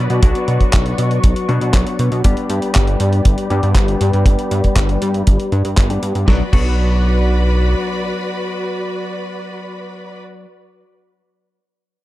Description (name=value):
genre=italo disco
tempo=119 BPM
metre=4/4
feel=straight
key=B minor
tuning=A4 = 440 Hz
part: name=clear symphonic string section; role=sustained chords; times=0.0-10.2 s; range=F#4 to C#6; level=-24 LUFS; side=equal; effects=low-pass filter
part: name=semi-hollow electric guitar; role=stabs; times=0.0-10.4 s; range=F#3 to G4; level=-23 LUFS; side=left 3 dB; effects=lush chorus, low-pass filter, tape echo
part: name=chorused synth bass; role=bass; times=0.0-7.8 s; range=G1 to B2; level=-17 LUFS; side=equal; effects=none
part: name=clean 12-bit digital drum machine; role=drums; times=0.1-6.7 s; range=crash cymbal, handclaps, hi-hat, snare drum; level=-24 LUFS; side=equal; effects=none
part: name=kick drum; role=drums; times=0.2-6.7 s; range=none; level=-13 LUFS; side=equal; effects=none
room=little or no reverb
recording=dark, warm production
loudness=-13 LUFS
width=side -16 dB against mid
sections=0.0-6.3 A section; 6.3-10.3 B section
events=filter sweep on clean electric guitar 0.0-6.3; filter sweep on string section 0.0-6.3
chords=0.0 Bm; 2.2 G; 6.3 Bm